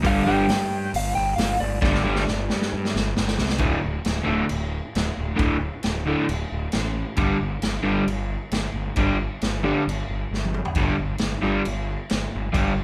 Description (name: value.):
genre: garage rock duo or trio.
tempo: 134 BPM.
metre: 4/4.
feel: straight.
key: unclear.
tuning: A4 = 440 Hz.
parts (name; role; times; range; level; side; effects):
crunchy overdriven guitar; riff; 0.0-12.7 s; D2 to G3; -26 LUFS; equal; none.
fuzz fingered electric bass; bass; 0.0-12.8 s; D1 to G2; -30 LUFS; equal; overdrive.
vintage drum kit; drums; 0.0-12.7 s; crash cymbal, hi-hat, kick drum, snare drum, toms; -29 LUFS; equal; none.
electric slide guitar; melody; 0.1-2.7 s; D5 to G5; -29 LUFS; equal; none.
room: light reverb.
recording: band playing live in one room.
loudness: -24 LUFS.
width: mono.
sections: 0.0-3.6 A section; 3.6-12.8 B section.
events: electric slide guitar solo 0.0-3.6; drum fill 1.8-3.6, 10.3-10.8.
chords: 0.0 G5; 3.6 D5; 7.2 G5.